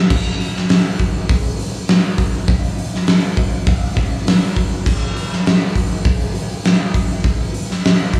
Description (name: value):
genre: rock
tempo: 101 BPM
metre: 4/4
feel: straight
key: none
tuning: none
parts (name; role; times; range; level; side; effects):
- huge arena drum kit; drums; 0.1-8.2 s; crash cymbal, hi-hat, kick drum, snare drum; -17 LUFS; equal; none
room: moderate club reverb, RT60 0.8 s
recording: live gig heard through the venue's PA, club reverb, studio ambience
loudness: -17 LUFS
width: mono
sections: 0.1-8.2 A section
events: none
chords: none